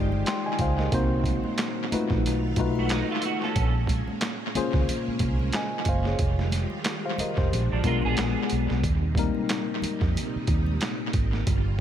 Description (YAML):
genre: R&B, neo-soul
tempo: 91 BPM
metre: 4/4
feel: swing 56% on 16ths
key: unclear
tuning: A4 = 440 Hz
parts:
  - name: tine electric piano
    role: accompaniment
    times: 0.0-11.5 s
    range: G3 to C6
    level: -29 LUFS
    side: moving between left 9 dB and right 1 dB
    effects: auto-pan, tape echo
  - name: string machine, violins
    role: sustained chords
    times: 0.0-11.8 s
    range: Bb2 to E#5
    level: -34 LUFS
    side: right 1 dB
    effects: ensemble chorus
  - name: vintage muted fingered electric bass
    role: bass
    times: 0.0-11.8 s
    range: F1 to F2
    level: -26 LUFS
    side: right 1 dB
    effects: none
  - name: congas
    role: percussion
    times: 0.1-10.8 s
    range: none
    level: -40 LUFS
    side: right 4 dB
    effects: none
  - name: boom bap sampler-style drum kit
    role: drums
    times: 0.3-11.6 s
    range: handclaps, hi-hat, kick drum, snare drum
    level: -28 LUFS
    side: right 1 dB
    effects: tape echo
  - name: clean electric guitar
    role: second line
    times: 2.8-3.7, 7.7-8.8 s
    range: F3 to A4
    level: -31 LUFS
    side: right 6 dB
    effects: ensemble chorus, tape echo
room: little or no reverb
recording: echo-heavy mix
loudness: -23 LUFS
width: side -10 dB against mid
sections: 0.0-11.8 A section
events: none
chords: 0.0 Fm9; 0.9 Cm7b5; 2.2 B7#11; 3.6 Bbm9; 6.2 Fm9; 7.5 Bb7b9; 8.8 Eb6